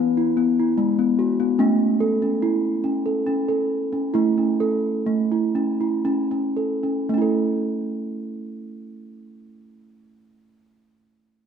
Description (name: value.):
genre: world meditative.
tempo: 54-73 BPM.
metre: 3/4.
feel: straight.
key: A major.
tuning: A4 = 440 Hz.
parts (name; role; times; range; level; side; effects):
steel tongue drum; arpeggios; 0.0-10.2 s; E3 to A4; -20 LUFS; equal; none.
room: wet echo chamber reverb, RT60 1.7 s, small room ambience.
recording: none.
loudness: -19 LUFS.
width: side -7 dB against mid.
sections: 0.0-7.1 A section; 7.1-10.4 B section.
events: slowing down 1.6-7.1.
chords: 0.0 E; 1.6 A.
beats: 0.77 | 1.59 2.42 3.27 | 4.15 5.07 6.05 | 7.10 8.20 9.30.